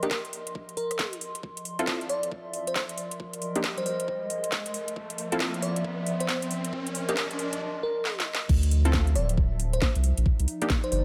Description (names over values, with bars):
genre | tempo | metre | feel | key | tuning
UK garage, two-step garage | 136 BPM | 4/4 | swing 63% on 16ths | unclear | A4 = 440 Hz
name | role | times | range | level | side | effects
bell-like FM electric piano | melody | 0.0-11.0 s | Bb4 to D5 | -35 LUFS | equal | chorus, low-pass filter
punchy chord stab | stabs | 0.0-10.7 s | Bb3 to A4 | -36 LUFS | equal | chorus
garage drum kit | drums | 0.0-11.0 s | crash cymbal, hi-hat, rim click, snare drum | -34 LUFS | equal | high-pass filter on hats, high-pass filter on snare, high-pass filter on cymbals
warbly tape-like pad | texture | 0.0-11.0 s | F3 to C6 | -37 LUFS | equal | chorus, built-in reverb, sidechain pumping
electronic kick drum | drums | 0.1-10.8 s | none | -29 LUFS | equal | high-pass filter on kick
riser | sound effects | 3.1-7.6 s | none | -40 LUFS | equal | none
saturated sub bass | bass | 8.5-11.0 s | D1 to D2 | -26 LUFS | equal | sidechain pumping
room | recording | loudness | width
light reverb | none | -28 LUFS | mono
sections
0.0-8.5 A section; 8.5-11.0 B section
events
build-up 0.0-8.5; riser 3.2-7.6; drum fill 8.1-8.5; drop 8.5-11.0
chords
0.0 Cm7; 1.4 Dm9; 3.0 Cm7; 5.0 Dm9; 6.5 Cm7; 8.5 Dm9; 10.0 Cm9